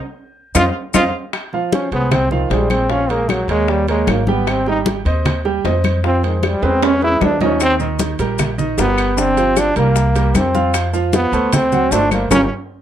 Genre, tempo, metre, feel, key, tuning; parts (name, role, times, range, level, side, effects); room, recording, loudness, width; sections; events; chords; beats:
Afro-Cuban jazz; 153 BPM; 4/4; straight; F minor; A4 = 441 Hz
warm concert grand piano; accompaniment; 0.5-12.4 s; D3 to G5; -20 LUFS; right 4 dB
upright bass; bass; 0.5-12.5 s; G1 to F2; -20 LUFS; equal
maracas; percussion; 0.5-1.0, 7.6-12.4 s; -27 LUFS; left 8 dB
timbales; percussion; 0.5-12.4 s; -24 LUFS; right 6 dB
bright trombone; melody; 0.6-12.4 s; Eb3 to F4; -17 LUFS; equal; slapback echo
bongos; percussion; 0.6-12.4 s; -25 LUFS; left 7 dB
claves; percussion; 0.6-12.4 s; -27 LUFS; left 6 dB
congas; percussion; 0.6-12.4 s; -22 LUFS; left 2 dB
light reverb; -14 LUFS; side -10 dB against mid
0.0-1.3 A section; 1.3-12.8 B section
band accent 0.0-1.3, 12.3-12.8; drum fill 0.4-1.3, 6.6-7.6; trombone solo 1.3-12.8
0.0 N.C.; 0.5 F5; 1.3 Fm; 2.9 Bbm7; 3.7 Eb7; 4.5 Ab6; 6.0 Fm; 6.8 E; 7.6 Eb; 9.2 Gm7; 10.0 C5; 10.7 F5; 11.5 D7; 12.3 Gm7
0.16 0.55 0.94 | 1.33 1.73 2.12 2.51 | 2.90 3.29 3.69 4.08 | 4.47 4.86 5.25 5.65 | 6.04 6.43 6.82 7.21 | 7.61 8.00 8.39 8.78 | 9.17 9.56 9.96 10.35 | 10.74 11.13 11.52 11.92 | 12.31